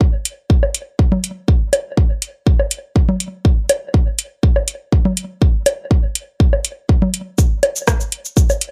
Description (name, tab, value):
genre	techno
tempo	122 BPM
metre	4/4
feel	straight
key	none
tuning	none
part	electronic kick drum	drums	0.0-8.5 s	none	-16 LUFS	equal	none
part	house drum kit	drums	0.3-8.7 s	cabasa, hi-hat, rim click	-21 LUFS	equal	none
part	woodblock and congas	percussion	0.6-8.6 s	none	-20 LUFS	equal	delay
room	little or no reverb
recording	none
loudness	-17 LUFS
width	mono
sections	0.0-8.7 A section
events	none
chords	none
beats	0.01 0.50 0.99 | 1.48 1.98 2.47 2.96 | 3.45 3.94 4.43 4.92 | 5.42 5.91 6.40 6.89 | 7.38 7.88 8.37